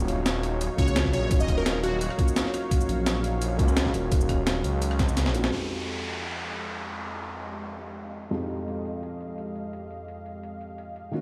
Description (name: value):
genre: liquid drum and bass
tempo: 171 BPM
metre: 4/4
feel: straight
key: unclear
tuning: A4 = 439 Hz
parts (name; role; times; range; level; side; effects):
- felt-muted upright piano; accompaniment; 0.0-11.2 s; F2 to G4; -35 LUFS; equal; tape echo
- warm analog pad; sustained chords; 0.0-11.2 s; Gb3 to F5; -39 LUFS; equal; chorus, sidechain pumping
- swelling detuned saw bass; bass; 0.0-5.5 s; Eb1 to Db2; -30 LUFS; equal; tube saturation
- breakbeat sampler-style drum kit; drums; 0.0-11.2 s; hi-hat, rim click, shaker, snare drum; -32 LUFS; equal; low-pass filter on hats, low-pass filter on perc, low-pass filter on snare
- plucky unison lead; melody; 0.8-2.1 s; Gb4 to Eb5; -33 LUFS; equal; digital delay
- electronic kick drum; drums; 0.8-5.1 s; none; -28 LUFS; equal; none
- downlifter; sound effects; 5.5-8.3 s; none; -38 LUFS; equal; none
room: light reverb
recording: played on a big sound system in a bare room, stone room reverb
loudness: -27 LUFS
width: mono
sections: 0.0-5.5 A section; 5.5-11.2 B section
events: drop 0.0-5.5; drum fill 5.0-5.5; band accent 5.4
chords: 0.0 Ebm9; 5.5 Fm9